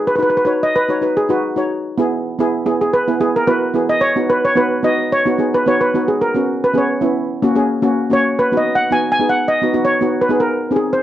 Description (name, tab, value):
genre	calypso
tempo	110 BPM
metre	4/4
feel	swing 54% on 16ths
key	B major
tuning	A4 = 440 Hz
part	steel pan	melody	0.0-11.0 s	F#4 to G#5	-16 LUFS	equal	none
part	steel pan	accompaniment	0.0-11.0 s	A#3 to C#5	-17 LUFS	equal	none
room	light reverb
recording	dry, close 1970s-style studio recording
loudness	-14 LUFS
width	side -12 dB against mid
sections	0.0-11.0 A section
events	steel pan solo 0.0-11.0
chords	0.0 B; 1.8 E; 4.0 B; 6.2 F#sus4; 7.3 F#; 8.4 B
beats	0.21 0.75 1.30 | 1.84 2.39 2.93 3.48 | 4.02 4.57 5.11 5.66 | 6.21 6.75 7.30 7.84 | 8.39 8.93 9.48 10.02 | 10.57